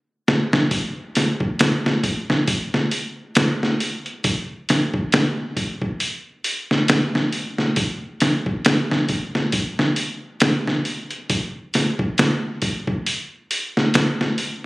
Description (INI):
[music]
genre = trip hop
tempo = 68 BPM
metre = 4/4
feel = swing 57% on 16ths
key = none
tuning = none
[part]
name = trip hop sampler-style drum kit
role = drums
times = 0.3-14.6 s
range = hi-hat, kick drum, snare drum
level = -19 LUFS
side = equal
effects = studio reverb
[sound]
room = wet echo chamber reverb, RT60 1.9 s, digital ambience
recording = recorded on a phone in the room, club reverb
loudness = -19 LUFS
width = side -21 dB against mid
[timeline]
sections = 0.7-14.7 A section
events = stop 0.0-0.7; drum fill 0.3-0.7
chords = none